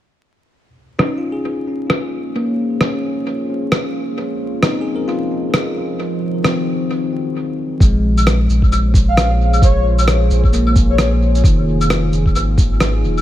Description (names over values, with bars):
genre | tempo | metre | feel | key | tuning
future garage | 132 BPM | 4/4 | swing 60% on 16ths | Bb minor | A4 = 439 Hz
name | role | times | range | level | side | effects
deep dark ambient pad | sustained chords | 1.9-13.2 s | Eb3 to Db6 | -25 LUFS | right 1 dB | chorus, built-in reverb, vintage 12-bit sampler grit, sidechain pumping
bell-like tine electric piano | accompaniment | 1.0-13.2 s | Eb3 to Bb4 | -21 LUFS | left 2 dB | sidechain pumping, low-pass filter, dub echo
electronic rim click, shaker and claves | drums | 1.0-13.2 s | none | -20 LUFS | equal | low-pass filter on snare, low-pass filter on perc, low-pass filter on room, dub echo
warm sub bass | bass | 7.8-13.2 s | Eb1 to Bb1 | -15 LUFS | equal | sidechain pumping
electronic kick drum | drums | 7.8-12.7 s | none | -13 LUFS | equal | none
breathy flute-like synth lead | melody | 9.1-11.1 s | Db5 to F5 | -22 LUFS | left 1 dB | analog chorus, tape echo
room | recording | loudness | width
light reverb, digital ambience | echo-heavy mix, vinyl crackle | -14 LUFS | side -13 dB against mid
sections
0.5-7.8 A section; 7.8-13.2 B section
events
fade-in on ambient pad 0.5-7.8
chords
0.5 Bbm7; 4.2 Fm7; 6.0 Ebm9; 7.8 Bbm7; 11.4 Fm7